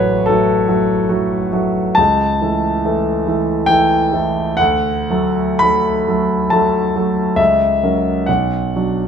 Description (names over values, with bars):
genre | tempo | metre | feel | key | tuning
classical, romantic nocturne for solo piano | 55-75 BPM | 3/4 | rubato | D major | A4 = 440 Hz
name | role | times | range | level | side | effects
warm concert grand piano | solo | 0.0-9.1 s | A1 to B5 | -14 LUFS | equal | none
room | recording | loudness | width
moderate recital hall reverb, RT60 1.6 s | close, detailed microphones | -13 LUFS | side -7 dB against mid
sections
0.0-9.1 A section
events
none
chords
0.0 F#m/A; 2.0 A/C#; 4.6 D; 7.4 F#7/C#; 8.3 Bm